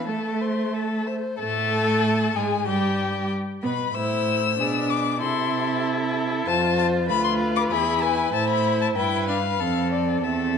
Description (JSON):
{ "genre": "quick classical-period movement for string quartet", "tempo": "95 BPM", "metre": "2/4", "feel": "straight", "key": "unclear", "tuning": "A4 = 439 Hz", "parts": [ { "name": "rich violin", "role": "melody", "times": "0.0-10.6 s", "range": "D5 to E6", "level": "-26 LUFS", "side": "left 9 dB", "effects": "none" }, { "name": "warm violin", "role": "second line", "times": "0.0-10.6 s", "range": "G4 to C5", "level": "-27 LUFS", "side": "left 4 dB", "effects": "none" }, { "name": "rich viola", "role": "accompaniment", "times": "0.0-10.6 s", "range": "E3 to F4", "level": "-27 LUFS", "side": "right 2 dB", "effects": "none" }, { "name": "clear cello", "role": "bass", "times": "0.0-10.6 s", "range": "D2 to A3", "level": "-27 LUFS", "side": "right 3 dB", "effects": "none" } ], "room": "wet recital hall reverb, RT60 1.4 s", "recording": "dark, warm production", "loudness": "-21 LUFS", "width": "side -6 dB against mid", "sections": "0.0-1.4 A section; 1.4-10.6 B section", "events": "none", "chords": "0.1 Am; 1.4 N.C.; 2.7 G; 4.0 Am; 4.6 G#dim/B; 5.2 Am/C; 6.5 F; 7.1 Bdim/D; 7.7 E; 8.3 Am; 9.0 Em/G; 9.6 F", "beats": "| 0.09 0.74 | 1.41 2.05 | 2.68 3.31 | 3.96 4.59 | 5.22 5.84 | 6.47 7.09 | 7.71 8.33 | 8.96 9.60 | 10.24" }